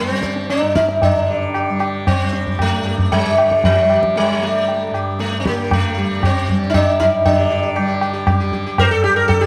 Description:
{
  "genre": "indian classical, Hindustani",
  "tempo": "116 BPM",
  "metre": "3/4",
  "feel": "straight",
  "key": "unclear",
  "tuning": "A4 = 439 Hz",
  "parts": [
    { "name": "sitar", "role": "melody", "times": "0.0-9.5 s", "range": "F3 to C5", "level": "-19 LUFS", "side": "equal", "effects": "none" },
    { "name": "tanpura", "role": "drone", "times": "0.0-9.5 s", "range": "G2 to G3", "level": "-26 LUFS", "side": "equal", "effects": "none" },
    { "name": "tabla", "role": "percussion", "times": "0.1-9.5 s", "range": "none", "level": "-22 LUFS", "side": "equal", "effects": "none" }
  ],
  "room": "wet echo chamber reverb, RT60 2.5 s",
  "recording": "none",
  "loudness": "-17 LUFS",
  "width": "mono",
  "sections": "0.0-7.3 A section; 7.3-9.5 B section",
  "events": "speeding up 0.0-9.5",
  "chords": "none",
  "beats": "0.50 | 1.02 1.55 2.08 | 2.60 3.12 3.64 | 4.16 4.68 5.20 | 5.71 6.23 6.74 | 7.25 7.76 8.28 | 8.78 9.29"
}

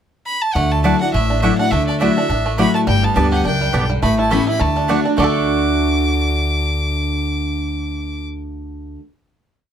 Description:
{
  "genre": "bluegrass",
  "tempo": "208 BPM",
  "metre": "4/4",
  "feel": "swing 56% on 8ths",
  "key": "D major",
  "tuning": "A4 = 439 Hz",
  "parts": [
    { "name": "rich fiddle", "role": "melody", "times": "0.3-8.3 s", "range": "D5 to D6", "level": "-22 LUFS", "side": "equal", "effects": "none" },
    { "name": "picked steel-string acoustic guitar", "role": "accompaniment", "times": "0.6-9.0 s", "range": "F#2 to G4", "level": "-20 LUFS", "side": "left 2 dB", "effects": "none" },
    { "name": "bluegrass banjo", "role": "arpeggios", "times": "0.6-9.0 s", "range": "D3 to A4", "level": "-22 LUFS", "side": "right 4 dB", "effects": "none" },
    { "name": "upright bass", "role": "bass", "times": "0.6-9.0 s", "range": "G1 to D2", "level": "-21 LUFS", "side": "equal", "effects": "none" },
    { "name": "mandolin", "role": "stabs", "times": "0.8-9.0 s", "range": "A3 to B5", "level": "-24 LUFS", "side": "right 6 dB", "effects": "none" }
  ],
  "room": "light reverb",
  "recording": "close, detailed microphones",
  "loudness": "-15 LUFS",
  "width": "side -9 dB against mid",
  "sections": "0.0-0.6 pickup bar; 0.6-5.2 A section; 5.2-7.5 final chord",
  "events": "none",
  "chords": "0.0 N.C.; 0.6 Dadd9; 2.9 Gadd9; 4.0 Aadd9; 4.6 D",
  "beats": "0.27 | 0.56 0.85 1.14 1.43 | 1.72 2.00 2.29 2.58 | 2.87 3.16 3.45 3.74 | 4.03 4.32 4.61 4.90 | 5.18 5.47 5.76 6.05 | 6.34 6.63 6.92 7.21"
}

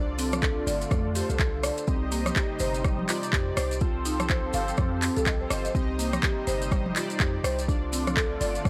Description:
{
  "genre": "afro house",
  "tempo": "124 BPM",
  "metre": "4/4",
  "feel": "swing 60% on 16ths",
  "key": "C dorian",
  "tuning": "A4 = 440 Hz",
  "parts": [
    { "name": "warm analog pad", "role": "sustained chords", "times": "0.1-8.7 s", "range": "C3 to A4", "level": "-40 LUFS", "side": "equal", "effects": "chorus, sidechain pumping" },
    { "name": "mellow synth brass", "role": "stabs", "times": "0.0-8.7 s", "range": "C4 to Eb5", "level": "-37 LUFS", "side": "equal", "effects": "chorus, phaser, sidechain pumping, tape echo" },
    { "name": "warm 808-style bass", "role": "bass", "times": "0.0-8.7 s", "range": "G1 to F2", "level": "-34 LUFS", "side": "equal", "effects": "tube saturation, sidechain pumping" },
    { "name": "buzzing marimba with medium mallets", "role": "arpeggios", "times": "0.2-8.7 s", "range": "G3 to F5", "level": "-33 LUFS", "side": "equal", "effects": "sidechain pumping, tape echo" },
    { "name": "afro-pop drum kit", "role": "drums", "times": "0.2-8.7 s", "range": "handclaps, hi-hat, rim click, toms", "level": "-33 LUFS", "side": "equal", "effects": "none" },
    { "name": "maracas", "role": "percussion", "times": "0.2-8.7 s", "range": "none", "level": "-42 LUFS", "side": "equal", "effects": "none" },
    { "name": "electronic kick drum", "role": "drums", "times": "0.4-8.7 s", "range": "none", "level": "-29 LUFS", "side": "equal", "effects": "none" }
  ],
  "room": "little or no reverb",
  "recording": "dry, gritty hardware recording",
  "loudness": "-27 LUFS",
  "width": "mono",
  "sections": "0.0-8.7 A section",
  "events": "none",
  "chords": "0.0 Dm; 1.9 Cm; 3.8 F; 5.7 Cm; 7.7 Dm",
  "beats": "0.42 0.91 1.39 | 1.88 2.36 2.85 3.33 | 3.81 4.30 4.78 5.26 | 5.75 6.23 6.72 7.20 | 7.68 8.17 8.65"
}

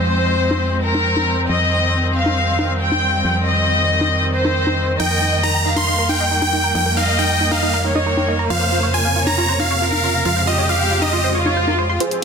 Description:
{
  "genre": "uplifting trance",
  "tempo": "137 BPM",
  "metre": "4/4",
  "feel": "straight",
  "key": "unclear",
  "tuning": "A4 = 439 Hz",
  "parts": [
    { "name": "warm chamber violin section", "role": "second line", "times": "0.0-11.9 s", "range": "F4 to G5", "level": "-20 LUFS", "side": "left 2 dB", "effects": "vintage 12-bit sampler grit, dub echo" },
    { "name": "muted studio string section", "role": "sustained chords", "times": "0.0-12.2 s", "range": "C3 to C4", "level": "-24 LUFS", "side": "right 1 dB", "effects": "none" },
    { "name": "solid FM bass", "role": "bass", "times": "0.0-12.0 s", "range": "F2", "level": "-21 LUFS", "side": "equal", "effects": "high-pass filter" },
    { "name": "downlifter, swell and riser", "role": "sound effects", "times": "0.0-1.5, 11.3-12.2 s", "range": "none", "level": "-29 LUFS", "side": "equal", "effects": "none" },
    { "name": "electronic congas and hi-hat", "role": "drums", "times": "0.5-12.2 s", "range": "none", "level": "-26 LUFS", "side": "left 2 dB", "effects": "studio ambience" },
    { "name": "supersaw chords", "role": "melody", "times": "5.0-12.2 s", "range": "Ab4 to C6", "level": "-19 LUFS", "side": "equal", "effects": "low-pass filter, digital delay" },
    { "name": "tight sequenced synth", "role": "arpeggios", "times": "5.0-12.2 s", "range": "Eb4 to C6", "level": "-25 LUFS", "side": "right 5 dB", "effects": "chorus, digital delay" },
    { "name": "wide unison pluck", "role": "second line", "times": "12.0-12.2 s", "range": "C5", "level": "-26 LUFS", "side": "left 1 dB", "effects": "cassette tape, digital delay" }
  ],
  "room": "light reverb, digital ambience",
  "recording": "dense, heavily limited modern master",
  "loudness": "-15 LUFS",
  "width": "side -6 dB against mid",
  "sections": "0.0-12.0 A section",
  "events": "swell 11.3-12.0",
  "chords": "0.0 Fm; 1.5 Cm/F; 5.0 Eb/F; 8.5 Bbmadd9/F",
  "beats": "0.18 0.62 1.06 | 1.49 1.93 2.37 2.81 | 3.25 3.68 4.12 4.56 | 5.00 5.44 5.87 6.31 | 6.75 7.19 7.63 8.06 | 8.50 8.94 9.38 9.82 | 10.25 10.69 11.13 11.57 | 12.01"
}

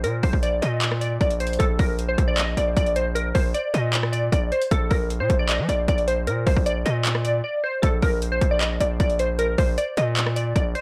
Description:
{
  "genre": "hip hop, trap",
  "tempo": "154 BPM",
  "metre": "4/4",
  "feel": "half-time",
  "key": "Bb major",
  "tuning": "A4 = 440 Hz",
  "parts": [
    { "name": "glassy wavetable pluck", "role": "melody", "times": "0.0-10.8 s", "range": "A4 to Eb5", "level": "-27 LUFS", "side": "equal", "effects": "chorus, analog delay" },
    { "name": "distorted 808-style bass", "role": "bass", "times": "0.0-10.7 s", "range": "Bb1 to F3", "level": "-27 LUFS", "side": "equal", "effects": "distortion" },
    { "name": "trap drum kit", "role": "drums", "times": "0.0-10.8 s", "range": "handclaps, hi-hat, kick drum, rim click", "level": "-26 LUFS", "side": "equal", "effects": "overdrive" }
  ],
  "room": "little or no reverb",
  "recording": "dry, gritty hardware recording, transformer saturation",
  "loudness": "-22 LUFS",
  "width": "mono",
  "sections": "0.0-1.6 A section; 1.6-10.8 B section",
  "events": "break 7.4-7.8",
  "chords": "0.0 Bb5; 7.8 Bbadd9",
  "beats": "| 0.04 0.43 0.82 1.21 | 1.60 1.99 2.38 2.77 | 3.15 3.54 3.93 4.32 | 4.71 5.10 5.49 5.88 | 6.27 6.66 7.05 7.44 | 7.83 8.22 8.61 9.00 | 9.39 9.78 10.17 10.56"
}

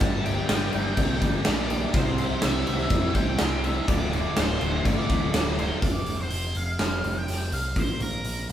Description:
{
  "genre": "classic rock",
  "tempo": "124 BPM",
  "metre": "4/4",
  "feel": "straight",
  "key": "unclear",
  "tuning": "A4 = 440 Hz",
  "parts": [
    { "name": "octave-fuzz lead guitar", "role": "melody", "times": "0.0-8.5 s", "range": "Bb4 to A5", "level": "-33 LUFS", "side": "right 1 dB", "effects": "wah, distortion" },
    { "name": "tonewheel organ", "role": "sustained chords", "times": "0.0-5.8 s", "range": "Bb3 to F5", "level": "-42 LUFS", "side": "left 2 dB", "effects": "none" },
    { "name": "raw garage guitar", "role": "riff", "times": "0.0-5.8 s", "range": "D2 to C5", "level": "-32 LUFS", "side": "right 4 dB", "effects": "overdrive" },
    { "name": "sludgy distorted guitar", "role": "riff", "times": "0.0-5.8 s", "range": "D2 to C5", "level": "-31 LUFS", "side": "left 4 dB", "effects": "overdrive" },
    { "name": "growling picked electric bass", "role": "bass", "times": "0.0-8.5 s", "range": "D1 to F2", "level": "-30 LUFS", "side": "equal", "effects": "overdrive" },
    { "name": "big rock drum kit", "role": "drums", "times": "0.0-8.5 s", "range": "crash cymbal, hi-hat, kick drum, snare drum", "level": "-25 LUFS", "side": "equal", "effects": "none" },
    { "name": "cowbell", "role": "percussion", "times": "0.0-5.7 s", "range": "none", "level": "-42 LUFS", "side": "left 1 dB", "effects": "none" }
  ],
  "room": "light reverb",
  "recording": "band playing live in one room",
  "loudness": "-22 LUFS",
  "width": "side -10 dB against mid",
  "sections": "0.0-5.8 A section; 5.8-8.5 B section",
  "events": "half time 5.8-8.5",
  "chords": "0.0 Gm; 2.0 C; 3.9 Dm; 5.8 F5; 7.8 Bbsus2",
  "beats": "| 0.02 0.50 0.99 1.47 | 1.95 2.44 2.92 3.40 | 3.89 4.37 4.85 5.34 | 5.82 6.31 6.79 7.28 | 7.76 8.25"
}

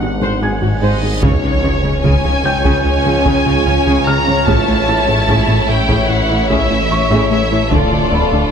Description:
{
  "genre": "cinematic, hybrid orchestral and electronic film score",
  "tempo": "74 BPM",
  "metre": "4/4",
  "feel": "straight",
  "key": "unclear",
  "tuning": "A4 = 439 Hz",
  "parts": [
    { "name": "dark chamber viola section", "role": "accompaniment", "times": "0.0-8.5 s", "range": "C#3 to F#5", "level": "-22 LUFS", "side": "right 1 dB", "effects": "none" },
    { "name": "deep dark ambient pad", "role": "sustained chords", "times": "0.0-8.5 s", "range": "E3 to D5", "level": "-21 LUFS", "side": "right 2 dB", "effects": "chorus, built-in reverb" },
    { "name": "analog pluck", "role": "arpeggios", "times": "0.0-8.5 s", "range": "C#3 to A4", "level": "-26 LUFS", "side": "right 4 dB", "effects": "none" },
    { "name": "chorused synth bass", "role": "riff", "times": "0.0-8.4 s", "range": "C#2 to A3", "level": "-20 LUFS", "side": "left 2 dB", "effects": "none" },
    { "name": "snarling distorted saw bass", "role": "bass", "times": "0.0-8.5 s", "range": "D1 to C#2", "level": "-20 LUFS", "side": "equal", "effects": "none" },
    { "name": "warm symphonic cello section", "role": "bass", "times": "0.0-8.4 s", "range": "D2 to C#3", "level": "-23 LUFS", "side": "right 2 dB", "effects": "none" },
    { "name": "reverse cymbal and sub drop", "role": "sound effects", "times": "0.9-4.5 s", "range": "none", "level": "-24 LUFS", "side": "right 1 dB", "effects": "none" },
    { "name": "felt-muted upright piano", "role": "texture", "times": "0.0-8.5 s", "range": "G5 to G#6", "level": "-25 LUFS", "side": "right 1 dB", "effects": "ping-pong delay" },
    { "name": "warm symphonic violin section", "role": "melody", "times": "0.8-8.5 s", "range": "C#5 to A#5", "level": "-19 LUFS", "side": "left 2 dB", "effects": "none" },
    { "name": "warm symphonic violin section", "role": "second line", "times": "1.2-8.5 s", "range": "C#4 to C#5", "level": "-19 LUFS", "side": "left 2 dB", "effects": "none" },
    { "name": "taiko ensemble", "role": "drums", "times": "1.2-8.5 s", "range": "none", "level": "-21 LUFS", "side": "equal", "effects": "none" }
  ],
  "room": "light reverb",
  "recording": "close, detailed microphones",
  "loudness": "-12 LUFS",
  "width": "side -7 dB against mid",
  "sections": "0.0-1.2 A section; 1.2-8.5 B section",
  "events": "reverse cymbal 0.9-1.2; impact 1.2-4.5",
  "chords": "0.0 G#7; 1.2 C#; 4.5 A; 7.7 Dm",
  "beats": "0.42 | 1.23 2.04 2.85 3.67 | 4.48 5.29 6.10 6.91 | 7.72"
}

